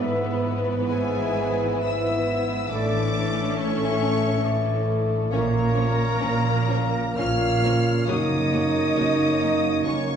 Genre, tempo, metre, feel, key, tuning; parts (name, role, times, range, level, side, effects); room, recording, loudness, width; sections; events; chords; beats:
classical; 59-70 BPM; 3/4; rubato; A major; A4 = 441 Hz
rich studio violin section; second line; 0.0-9.9 s; Db4 to Db5; -36 LUFS; left 3 dB
warm oboe; second line; 0.0-10.2 s; Db5 to E5; -35 LUFS; left 1 dB
mellow bassoon; accompaniment; 0.0-10.2 s; A3 to B3; -31 LUFS; equal
rich studio viola section; accompaniment; 0.0-9.9 s; E3 to C#4; -33 LUFS; right 1 dB
warm trombone section; sustained chords; 0.0-10.2 s; Db3 to B3; -31 LUFS; right 3 dB
concert harp; arpeggios; 0.0-10.2 s; Gb2 to B5; -30 LUFS; left 6 dB
rich studio cello section; bass; 0.0-10.2 s; Gb2 to Bb2; -32 LUFS; right 2 dB
rich studio double bass section; bass; 0.0-10.2 s; Gb1 to Bb1; -27 LUFS; right 3 dB
rich studio violin section; melody; 0.9-10.2 s; G#5 to F6; -32 LUFS; left 3 dB
small flute group; second line; 0.9-10.2 s; G#4 to F5; -31 LUFS; equal
mellow French horn section; sustained chords; 0.9-10.2 s; G#3 to F4; -27 LUFS; equal
wet recital hall reverb, RT60 1.4 s; heard from further back in the room, nothing above 10.5 kHz; -20 LUFS; side -8 dB against mid
0.0-10.2 A section
0.0 E/G#; 2.7 A; 5.3 Bbm; 8.1 Gb
| 0.02 0.88 1.82 | 2.71 3.58 4.45 | 5.32 6.21 7.18 | 8.08 8.96 9.85